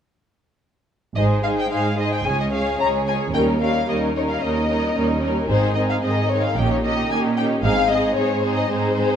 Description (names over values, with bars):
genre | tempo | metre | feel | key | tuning
quick classical-period movement for string orchestra | 112 BPM | 4/4 | rubato | Ab major | A4 = 438 Hz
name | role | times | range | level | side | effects
warm studio violin section | melody | 1.2-9.2 s | C5 to Bb5 | -24 LUFS | left 5 dB | none
warm studio violin section | second line | 1.2-9.2 s | Eb4 to Db5 | -25 LUFS | left 1 dB | none
warm studio viola section | accompaniment | 1.2-9.2 s | Eb3 to Eb4 | -24 LUFS | right 1 dB | none
rich studio cello section | bass | 1.2-9.2 s | Db2 to Bb2 | -24 LUFS | right 2 dB | none
warm studio double bass section | bass | 1.2-8.1 s | Ab1 to Eb2 | -26 LUFS | right 2 dB | none
room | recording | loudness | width
wet recital hall reverb, RT60 1.4 s | none | -18 LUFS | side -8 dB against mid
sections
1.2-9.2 A section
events
none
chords
1.2 Ab; 2.3 Db5; 3.3 Eb7; 5.5 Ab; 6.6 Eb7/Bb; 7.6 Ab